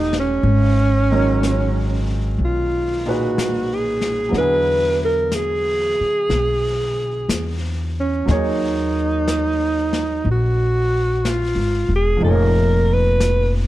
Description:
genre	jazz ballad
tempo	61 BPM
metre	4/4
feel	swing 69% on 8ths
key	Eb minor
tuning	A4 = 438 Hz
part	mellow alto saxophone	melody	0.0-13.5 s	C#4 to B4	-20 LUFS	right 1 dB	none
part	warm baby grand piano	accompaniment	0.0-13.7 s	Bb2 to C#5	-25 LUFS	right 1 dB	none
part	upright bass	bass	0.0-13.7 s	E1 to E2	-20 LUFS	equal	none
part	vintage brush drum kit	drums	0.1-13.7 s	brushed snare drum, hi-hat, snare drum	-30 LUFS	left 3 dB	none
room	little or no reverb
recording	dark, warm production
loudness	-16 LUFS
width	side -15 dB against mid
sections	0.0-13.7 A section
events	none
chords	0.4 Abm11; 4.3 E9; 8.3 Ebm7; 12.2 Db13/F

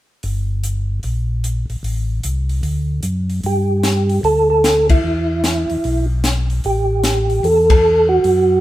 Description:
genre	soul jazz organ trio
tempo	150 BPM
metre	4/4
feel	swing 65% on 8ths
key	G major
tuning	A4 = 441 Hz
part	mellow tonewheel organ	bass	0.2-8.6 s	G1 to G2	-19 LUFS	equal	overdrive, slow rotary speaker
part	compact cocktail drum kit	drums	0.2-8.4 s	hi-hat, kick drum, ride cymbal, snare drum	-20 LUFS	left 1 dB	none
part	percussive tonewheel organ	melody	3.5-8.6 s	E4 to A4	-15 LUFS	right 1 dB	slow rotary speaker, chorus vibrato
room	moderate stone room reverb, RT60 1.0 s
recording	band playing live in one room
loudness	-14 LUFS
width	side -14 dB against mid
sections	0.2-3.4 A section; 3.4-8.6 B section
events	band accent 4.8, 7.6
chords	0.2 N.C.; 1.8 Am; 2.6 D; 3.4 Gsus2; 5.0 E5; 6.6 A5

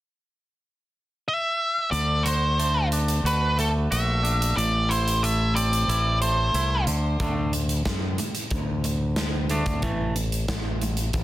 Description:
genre	quiet-loud alternative rock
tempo	91 BPM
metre	4/4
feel	straight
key	unclear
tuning	A4 = 445 Hz
part	octave-fuzz lead guitar	melody	1.3-6.8 s	A4 to E5	-25 LUFS	equal	distortion, tape echo
part	twangy electric guitar	arpeggios	1.9-11.2 s	A2 to F#4	-30 LUFS	right 1 dB	none
part	growling fingered electric bass	bass	1.9-11.2 s	A1 to F#2	-25 LUFS	equal	overdrive
part	big rock drum kit	drums	1.9-11.2 s	hi-hat, kick drum, snare drum	-30 LUFS	equal	none
room	light reverb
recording	dense, heavily limited modern master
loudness	-22 LUFS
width	side -15 dB against mid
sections	0.0-1.9 A section; 1.9-7.2 B section; 7.2-11.2 C section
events	none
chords	0.0 N.C.; 1.9 D; 4.6 Am; 6.9 N.C.; 7.2 D5; 9.8 A5

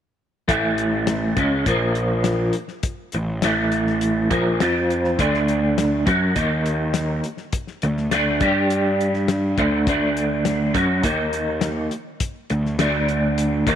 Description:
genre	psychedelic rock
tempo	102 BPM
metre	4/4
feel	straight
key	A phrygian dominant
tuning	A4 = 439 Hz
part	electric guitar through a small old amp	riff	0.5-13.8 s	A2 to G4	-19 LUFS	equal	rotary speaker
part	fuzz picked electric bass	bass	0.5-13.8 s	A1 to G2	-26 LUFS	equal	overdrive
part	damped 70s drum kit	drums	0.5-13.8 s	hi-hat, kick drum, snare drum	-27 LUFS	left 4 dB	none
room	light reverb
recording	1960s-style stereo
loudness	-18 LUFS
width	side -9 dB against mid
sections	0.5-13.8 A section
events	none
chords	0.5 A; 1.7 Bb5; 3.1 A5; 4.6 F5; 5.2 D5; 6.4 D#5; 7.8 D5; 8.4 G5; 9.6 D5; 11.0 D#5; 12.5 D5

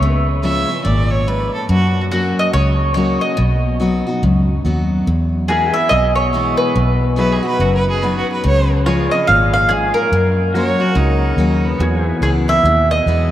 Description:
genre	honky-tonk and classic country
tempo	142 BPM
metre	4/4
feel	swing 62% on 8ths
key	B major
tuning	A4 = 440 Hz
part	mandolin	melody	0.0-13.3 s	F#4 to E#5	-18 LUFS	right 1 dB	none
part	picked steel-string acoustic guitar	accompaniment	0.0-13.3 s	E2 to F#4	-20 LUFS	left 2 dB	none
part	vintage muted fingered electric bass	bass	0.0-13.3 s	F#1 to F#2	-17 LUFS	equal	none
part	clear fiddle	second line	0.4-2.0, 7.2-11.8 s	B3 to E5	-23 LUFS	right 2 dB	none
part	pedal steel guitar	sustained chords	5.5-13.3 s	E4 to E5	-26 LUFS	equal	lush chorus
room	wet cathedral reverb, RT60 5.7 s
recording	in a vast, echoing space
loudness	-13 LUFS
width	side -12 dB against mid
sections	0.0-13.3 A section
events	none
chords	0.0 C#; 1.7 F#; 3.4 B; 5.1 E; 6.8 B; 8.4 C#; 10.1 F#; 11.8 E

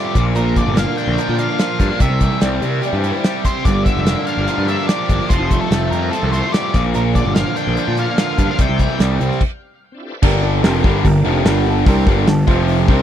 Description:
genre	classic rock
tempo	146 BPM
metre	4/4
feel	straight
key	unclear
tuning	A4 = 440 Hz
part	octave-fuzz lead guitar	melody	0.0-9.0 s	A4 to G5	-25 LUFS	left 1 dB	distortion
part	picked swing-style acoustic guitar	accompaniment	0.0-9.4 s	G2 to C5	-30 LUFS	right 10 dB	none
part	biting overdriven guitar	riff	0.0-13.0 s	F2 to G4	-22 LUFS	left 14 dB	none
part	overdriven semi-hollow guitar	riff	0.0-13.0 s	F2 to Bb4	-22 LUFS	right 10 dB	none
part	fuzz picked electric bass	bass	0.2-13.0 s	F1 to C3	-18 LUFS	left 1 dB	overdrive
part	damped 70s drum kit	drums	0.2-13.0 s	crash cymbal, hi-hat, kick drum, snare drum	-17 LUFS	equal	none
part	electric slide guitar	second line	2.4-3.3 s	Bb4 to D5	-27 LUFS	left 2 dB	none
part	bright tonewheel organ	sustained chords	9.9-13.0 s	Bb3 to G5	-31 LUFS	left 1 dB	none
part	warm upright piano	accompaniment	10.2-13.0 s	C4 to C5	-23 LUFS	right 4 dB	none
room	little or no reverb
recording	dry, close 1970s-style studio recording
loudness	-14 LUFS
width	side -10 dB against mid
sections	0.0-10.2 A section; 10.2-13.0 B section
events	stop 9.4-10.2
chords	0.2 Bb; 2.0 C; 3.7 Gm7; 5.3 Fadd9; 6.7 Bb; 8.6 C; 9.4 N.C.; 10.2 Gm; 12.5 F5

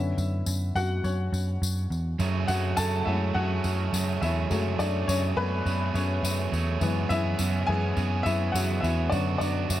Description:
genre	piano-driven pop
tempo	104 BPM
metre	4/4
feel	straight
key	F# minor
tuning	A4 = 441 Hz
part	warm baby grand piano	accompaniment	0.0-9.8 s	D3 to A5	-30 LUFS	left 3 dB	none
part	vintage muted picked electric bass	bass	0.0-9.8 s	E2 to F#2	-27 LUFS	equal	none
part	tambourine	percussion	0.2-9.8 s	none	-39 LUFS	left 5 dB	none
part	overdriven semi-hollow guitar	riff	2.2-9.8 s	F#2 to G#4	-30 LUFS	right 6 dB	none
room	small room ambience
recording	none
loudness	-24 LUFS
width	side -13 dB against mid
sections	0.0-9.8 A section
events	grand piano solo 0.0-9.8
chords	0.0 Bmadd9/F#; 2.2 F#madd9; 6.8 C#m7/F#; 9.1 Bmadd9/F#

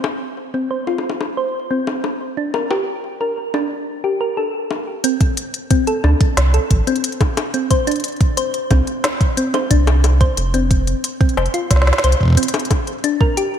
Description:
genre	IDM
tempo	90 BPM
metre	4/4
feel	straight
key	unclear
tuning	A4 = 438 Hz
part	organic electronic drum kit	drums	0.0-13.5 s	bongos, hi-hat, snare drum	-22 LUFS	left 3 dB	none
part	thumb-piano-like synth pluck	arpeggios	0.5-13.4 s	C4 to C5	-20 LUFS	left 1 dB	chorus, digital delay
part	electronic kick drum	drums	5.2-13.3 s	none	-16 LUFS	right 1 dB	none
part	warm sub bass	bass	6.0-12.1 s	F1 to D2	-15 LUFS	right 1 dB	none
room	light reverb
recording	bright 1980s-style digital production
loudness	-15 LUFS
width	side -9 dB against mid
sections	0.0-5.0 A section; 5.0-13.6 B section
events	filter sweep on drum 0.0-5.0; filter sweep on synth arpeggio sound 0.0-5.0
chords	0.0 N.C.; 2.4 Gm; 5.0 N.C.; 10.4 F5; 13.0 Gm

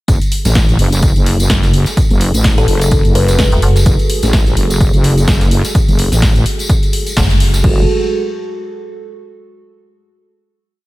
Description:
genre	bass house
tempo	127 BPM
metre	4/4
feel	swing 57% on 16ths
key	F# minor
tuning	A4 = 439 Hz
part	dark analog pad	sustained chords	1.2-7.9 s	F#4 to A4	-23 LUFS	right 2 dB	chorus, sidechain pumping
part	wobble bass	bass	0.1-7.9 s	F#1 to A1	-12 LUFS	equal	chorus, tube saturation, sidechain pumping
part	breakbeat sampler-style drum kit	drums	0.1-7.6 s	hi-hat, snare drum	-29 LUFS	equal	none
part	electronic kick drum	drums	0.1-7.7 s	none	-14 LUFS	equal	none
part	house drum kit	drums	0.1-7.7 s	crash cymbal, hi-hat, snare drum	-21 LUFS	equal	none
part	tambourine	percussion	0.1-7.6 s	none	-24 LUFS	left 1 dB	none
part	buzzing kalimba	melody	2.6-3.5 s	A4 to B4	-20 LUFS	left 3 dB	diffuse ambient delay
part	metallic FM bass	bass	3.5-3.8, 7.2-7.6 s	E1 to F#1	-11 LUFS	equal	tube saturation, sidechain pumping
room	digital ambience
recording	none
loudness	-10 LUFS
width	side -18 dB against mid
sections	0.1-7.6 drop; 7.6-9.5 final chord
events	drop 0.1-7.6; band accent 7.2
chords	0.1 F#madd9

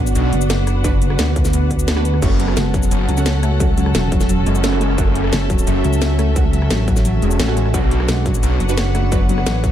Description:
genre	dark technical drum and bass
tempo	174 BPM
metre	4/4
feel	straight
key	F# minor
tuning	A4 = 440 Hz
part	deep dark ambient pad	sustained chords	0.0-9.7 s	B3 to C#5	-24 LUFS	right 2 dB	chorus, built-in reverb, sidechain pumping
part	pulsing pluck wobble bass	bass	0.0-9.7 s	E1 to D2	-18 LUFS	equal	chorus
part	warm chamber string section	texture	0.0-9.7 s	C#4 to F#5	-27 LUFS	left 2 dB	sidechain pumping
part	drum and bass drum kit	drums	0.1-9.7 s	crash cymbal, hi-hat, rim click, shaker, snare drum	-24 LUFS	equal	none
part	wide detuned saw bass	bass	0.2-8.6 s	E1 to B1	-18 LUFS	equal	chorus, overdrive
part	orchestra-hit-like synth stab	stabs	0.8-9.2 s	A3 to B4	-28 LUFS	right 4 dB	none
part	electronic kick drum	drums	0.8-9.7 s	none	-19 LUFS	equal	distortion
part	wide unison pluck	arpeggios	2.2-9.7 s	F#3 to C#4	-24 LUFS	left 2 dB	sidechain pumping, diffuse ambient delay
room	digital ambience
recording	none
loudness	-14 LUFS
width	side -11 dB against mid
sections	0.0-9.7 A section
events	kick drops out 1.9-2.2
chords	0.0 Bm; 2.2 F#m; 7.7 Bm

